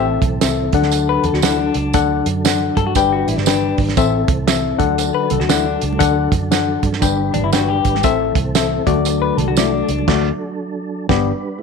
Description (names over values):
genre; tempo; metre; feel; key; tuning
uptempo 1960s-style soul; 118 BPM; 4/4; swing 62% on 8ths; unclear; A4 = 440 Hz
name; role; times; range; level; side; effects
barky reed electric piano; accompaniment; 0.0-11.3 s; G2 to G5; -18 LUFS; left 10 dB; overdrive
mellow tonewheel organ; sustained chords; 0.0-11.6 s; E3 to B4; -25 LUFS; right 3 dB; chorus vibrato, fast rotary speaker
electric guitar through a small old amp; riff; 0.0-10.1 s; D4 to B4; -21 LUFS; left 10 dB; none
vintage muted fingered electric bass; bass; 0.0-11.3 s; G1 to G2; -22 LUFS; right 3 dB; none
warm soul drum kit; drums; 0.2-11.3 s; crash cymbal, hi-hat, kick drum, snare drum; -20 LUFS; right 6 dB; none
tambourine; percussion; 0.4-9.7 s; none; -26 LUFS; right 17 dB; none
congas; percussion; 4.0-10.1 s; none; -29 LUFS; right 15 dB; none
room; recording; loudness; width
light reverb, studio reverb; 1960s-style stereo with parts hard left and right; -14 LUFS; side -5 dB against mid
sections
0.0-11.6 A section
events
band accent 10.1-11.6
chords
0.0 Am; 0.7 D; 3.0 G; 4.0 Am; 4.7 D; 7.0 G; 8.0 Am; 8.8 D; 11.1 G